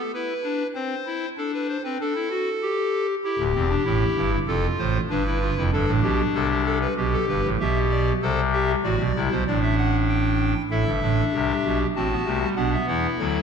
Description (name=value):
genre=classical, baroque-style 4-part fugue for pipe organ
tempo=97 BPM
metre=3/4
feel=straight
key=C major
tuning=A4 = 440 Hz
part: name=pipe organ, clarinet reed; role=solo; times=0.0-13.4 s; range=D1 to B5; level=-21 LUFS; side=equal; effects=none
room=wet scoring stage reverb, RT60 1.7 s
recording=dark, warm production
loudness=-21 LUFS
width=side -6 dB against mid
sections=0.0-10.7 A section; 10.7-13.4 B section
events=none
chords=0.0 G (rootless); 0.8 C; 1.4 D7; 2.6 Gsus2; 3.2 C (rootless); 4.5 F; 5.1 G7; 6.3 C5; 6.9 G; 8.2 C; 8.8 D7/A; 10.1 G5; 10.7 Am; 12.0 F#dim/A; 12.6 Bm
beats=0.15 0.76 | 1.38 2.00 2.62 | 3.23 3.85 4.47 | 5.09 5.71 6.33 | 6.95 7.57 8.20 | 8.82 9.44 10.07 | 10.70 11.33 11.95 | 12.57 13.19